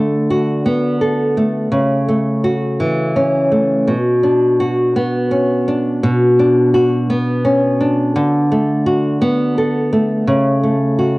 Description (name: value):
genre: pop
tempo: 56 BPM (dotted quarters)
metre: 6/8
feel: straight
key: B minor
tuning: A4 = 437 Hz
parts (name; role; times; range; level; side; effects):
- flamenco guitar; solo; 0.0-11.2 s; B2 to A4; -13 LUFS; equal; cassette tape
room: moderate spring reverb, RT60 2.8 s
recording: home recording on cassette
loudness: -13 LUFS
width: side -21 dB against mid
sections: 0.0-11.2 A section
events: none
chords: 0.0 D6; 1.7 A6/C#; 3.9 Bmadd9; 8.1 D6; 10.3 A6/C#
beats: 0.66 | 1.73 2.80 | 3.88 4.95 | 6.02 7.08 | 8.15 9.21 | 10.28